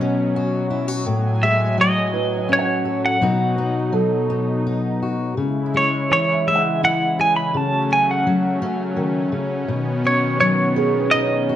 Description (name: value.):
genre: folk.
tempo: 84 BPM.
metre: 3/4.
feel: straight.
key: unclear.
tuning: A4 = 440 Hz.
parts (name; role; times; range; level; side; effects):
semi-hollow electric guitar; melody; 0.0-11.6 s; C#5 to B5; -19 LUFS; right 1 dB; tremolo.
fingerpicked steel-string acoustic guitar; accompaniment; 0.0-11.6 s; A2 to A4; -21 LUFS; left 3 dB; none.
brassy analog pad; sustained chords; 0.0-11.6 s; A2 to G#5; -26 LUFS; right 2 dB; chorus.
felt-muted upright piano; arpeggios; 0.0-11.6 s; G#4 to F#5; -26 LUFS; right 8 dB; none.
room: wet large studio reverb, RT60 0.9 s.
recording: none.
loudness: -17 LUFS.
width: side -11 dB against mid.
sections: 0.0-11.6 A section.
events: none.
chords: 0.0 Bsus2; 1.1 F#madd9/A; 3.2 B; 5.4 C#m; 7.5 F#m/C#; 9.7 Badd9.